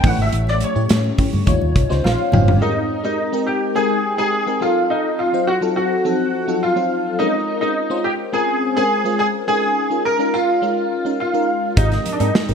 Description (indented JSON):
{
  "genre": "polished 1980s jazz-funk pop",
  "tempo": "105 BPM",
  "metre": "4/4",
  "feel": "straight",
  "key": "Ab major",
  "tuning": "A4 = 441 Hz",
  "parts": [
    { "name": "clear grand piano", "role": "melody", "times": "0.0-12.5 s", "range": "D4 to F#5", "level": "-19 LUFS", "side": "right 1 dB", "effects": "ensemble chorus" },
    { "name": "FM electric piano with soft pad layer", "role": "accompaniment", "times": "0.0-12.5 s", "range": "F3 to G5", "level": "-21 LUFS", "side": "left 3 dB", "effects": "phaser, analog chorus" },
    { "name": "vintage muted fingered electric bass", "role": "bass", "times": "0.0-2.6, 11.8-12.5 s", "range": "F#1 to A2", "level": "-19 LUFS", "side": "equal", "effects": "none" },
    { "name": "modern studio drum kit", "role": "drums", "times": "0.0-2.6, 11.8-12.5 s", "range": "hi-hat, kick drum, snare drum, toms", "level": "-19 LUFS", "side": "equal", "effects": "gated reverb" },
    { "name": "congas", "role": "percussion", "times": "0.0-2.5, 11.8-12.5 s", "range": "none", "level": "-32 LUFS", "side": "right 3 dB", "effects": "none" }
  ],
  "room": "moderate plate reverb, RT60 1.5 s, studio reverb",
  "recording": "bright 1980s-style digital production",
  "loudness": "-16 LUFS",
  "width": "side -6 dB against mid",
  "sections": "0.0-2.6 A section; 2.6-12.5 B section",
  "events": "grand piano solo 0.0-2.6; drum fill 2.0-2.6",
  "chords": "0.0 A7; 1.5 Eb13; 2.6 Abmaj9; 4.6 F7b9; 7.2 Bbm9; 9.5 Eb9sus4; 11.8 Abmaj9"
}